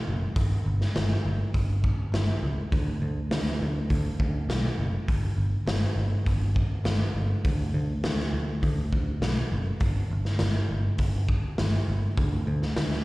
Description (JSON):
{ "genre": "classic rock", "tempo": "102 BPM", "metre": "4/4", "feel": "straight", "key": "unclear", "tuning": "A4 = 440 Hz", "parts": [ { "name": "picked electric bass", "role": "bass", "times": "0.1-12.9 s", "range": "F#1 to D2", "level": "-26 LUFS", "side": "equal", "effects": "none" }, { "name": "raw garage drum kit", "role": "drums", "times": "0.4-13.0 s", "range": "hi-hat, kick drum, snare drum", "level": "-28 LUFS", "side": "equal", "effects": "none" } ], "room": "little or no reverb", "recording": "live gig heard through the venue's PA, recital hall reverb", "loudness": "-24 LUFS", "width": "side -20 dB against mid", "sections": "0.0-13.0 A section", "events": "none", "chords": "none" }